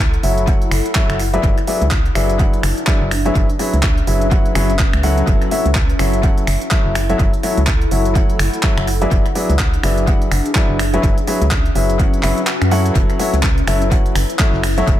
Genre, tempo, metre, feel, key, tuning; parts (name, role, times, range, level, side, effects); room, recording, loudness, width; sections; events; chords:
piano house; 125 BPM; 4/4; swing 59% on 16ths; F# minor; A4 = 439 Hz
organ-like FM bass; bass; 0.0-15.0 s; F#1 to F#2; -18 LUFS; equal; sidechain pumping
granular cloud pad; texture; 0.0-15.0 s; C#4 to F#5; -24 LUFS; left 1 dB; built-in reverb, sidechain pumping
garage drum kit; drums; 0.1-15.0 s; finger snaps, handclaps, hi-hat; -23 LUFS; equal; analog delay
warm upright piano; riff; 0.2-15.0 s; F#3 to F#5; -20 LUFS; left 2 dB; sidechain pumping, low-pass filter, analog delay
electronic kick drum; drums; 0.5-15.0 s; -16 LUFS; equal
swell; sound effects; 12.2-13.0 s; -30 LUFS; left 4 dB
soft brush drum kit; drums; 12.9-15.0 s; hi-hat, snare drum; -36 LUFS; left 4 dB
little or no reverb; echo-heavy mix; -13 LUFS; side -12 dB against mid
0.0-15.0 A section
kick drops out 12.5-13.0
0.0 F#m7; 1.2 E7/F#; 3.1 C#m7/F#; 5.3 F#m7; 8.9 E7/F#; 10.8 C#m7/F#; 13.0 F#m7